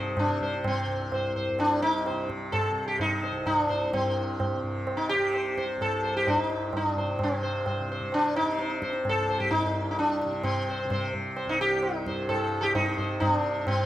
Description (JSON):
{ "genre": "indian classical, Hindustani", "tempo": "129 BPM", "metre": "7/4", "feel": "straight", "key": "C raga shivaranjani", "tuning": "A4 = 438 Hz", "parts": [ { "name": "sitar", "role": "melody", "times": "0.0-13.9 s", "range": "C4 to C5", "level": "-26 LUFS", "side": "equal", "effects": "none" }, { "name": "tanpura", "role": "drone", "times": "0.0-13.9 s", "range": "C2 to C3", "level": "-34 LUFS", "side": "equal", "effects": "none" }, { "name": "tabla", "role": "percussion", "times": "0.2-13.8 s", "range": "none", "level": "-32 LUFS", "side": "right 1 dB", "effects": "none" } ], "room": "light reverb, small room ambience", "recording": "rough home demo mix", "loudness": "-25 LUFS", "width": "side -13 dB against mid", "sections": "0.0-7.2 A section; 7.2-13.9 B section", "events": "none", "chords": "none", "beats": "0.18 | 0.65 1.12 1.59 2.06 2.53 3.00 3.46 | 3.93 4.40 4.87 5.33 5.80 6.27 6.73 | 7.20 7.66 8.13 8.59 9.05 9.52 9.98 | 10.44 10.91 11.37 11.83 12.29 12.75 13.21 | 13.67" }